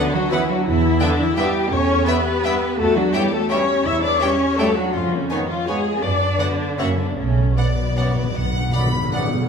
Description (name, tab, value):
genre	classical, orchestral ballroom waltz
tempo	143-182 BPM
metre	3/4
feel	rubato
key	B minor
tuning	A4 = 440 Hz
part	rich chamber violin section	melody	0.0-9.2 s	F#5 to G#5	-33 LUFS	left 3 dB	none
part	warm chamber viola section	accompaniment	0.0-9.1 s	B3 to E5	-23 LUFS	left 3 dB	none
part	bright trombone section	sustained chords	0.0-9.3 s	F#2 to B3	-30 LUFS	right 2 dB	none
part	mellow French horn section	sustained chords	0.0-9.1 s	F#3 to C#5	-28 LUFS	left 6 dB	none
part	bright trumpet section	stabs	0.0-9.3 s	B4 to E5	-31 LUFS	equal	none
part	warm chamber cello section	bass	0.0-9.1 s	B2 to E4	-24 LUFS	right 2 dB	none
part	mellow hollow flute section	second line	0.1-9.1 s	B4 to E6	-28 LUFS	left 3 dB	none
part	rich chamber violin section	second line	0.3-9.5 s	B4 to B5	-30 LUFS	left 3 dB	none
part	warm chamber double bass section	bass	0.7-8.7 s	B1 to F#2	-24 LUFS	right 2 dB	none
part	timpani	percussion	7.2-9.5 s	B2	-23 LUFS	left 2 dB	none
room	wet scoring stage reverb, RT60 1.7 s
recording	minimal, uncompressed stereo recording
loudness	-17 LUFS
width	side -6 dB against mid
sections	0.0-9.5 A section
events	timpani fill 7.2-9.5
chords	0.0 Bm/D; 0.7 Em; 2.8 C#dim/E; 4.9 C#7/E#; 6.0 Bm/F#; 6.8 F#7; 7.2 Bm